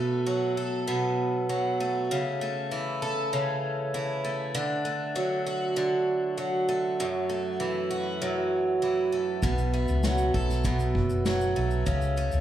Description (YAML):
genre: acoustic pop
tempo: 98 BPM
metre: 4/4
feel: straight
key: unclear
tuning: A4 = 440 Hz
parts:
  - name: picked twelve-string acoustic guitar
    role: accompaniment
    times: 0.0-12.4 s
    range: F#2 to A4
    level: -26 LUFS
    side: right 1 dB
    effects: none
  - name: woody fretless electric bass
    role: bass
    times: 9.4-12.4 s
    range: F#1 to D2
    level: -27 LUFS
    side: equal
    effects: analog chorus
  - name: unplugged drum kit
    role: drums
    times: 9.4-12.4 s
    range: kick drum, shaker, snare drum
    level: -31 LUFS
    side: equal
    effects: none
room: wet plate reverb, RT60 2.1 s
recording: dreamy mix soaked in reverb, small room reverb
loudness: -25 LUFS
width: side -11 dB against mid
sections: 0.0-12.4 A section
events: none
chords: 0.0 B5; 2.1 A/C#; 4.5 D; 7.0 F#m7; 9.4 B5; 11.9 A/C#